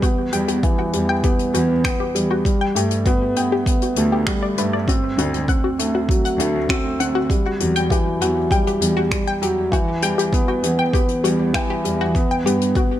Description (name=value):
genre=piano and strings electronica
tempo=99 BPM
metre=4/4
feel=straight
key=unclear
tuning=A4 = 444 Hz
part: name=wide unison pluck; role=arpeggios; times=0.0-12.8 s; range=F#4 to G5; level=-25 LUFS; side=left 4 dB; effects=sidechain pumping, digital delay
part: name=felt-muted upright piano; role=riff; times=0.0-13.0 s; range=E3 to C4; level=-20 LUFS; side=equal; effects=digital delay
part: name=electronic kick drum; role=drums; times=0.0-12.9 s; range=none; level=-20 LUFS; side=equal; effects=none
part: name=jazz brush drum kit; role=drums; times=0.0-12.9 s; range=finger snaps, hi-hat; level=-27 LUFS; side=left 4 dB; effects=none
part: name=dark chamber cello section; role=bass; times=0.3-12.7 s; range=D2 to G2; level=-25 LUFS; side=right 1 dB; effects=sidechain pumping
room=light reverb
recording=none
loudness=-17 LUFS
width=side -12 dB against mid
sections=0.0-13.0 A section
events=none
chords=0.0 Em; 2.5 Gadd9; 4.9 D7; 7.3 Emadd9; 12.2 G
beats=| 0.03 0.64 1.24 1.85 | 2.45 3.06 3.67 4.27 | 4.88 5.48 6.09 6.70 | 7.30 7.91 8.51 9.12 | 9.73 10.33 10.94 11.54 | 12.15 12.76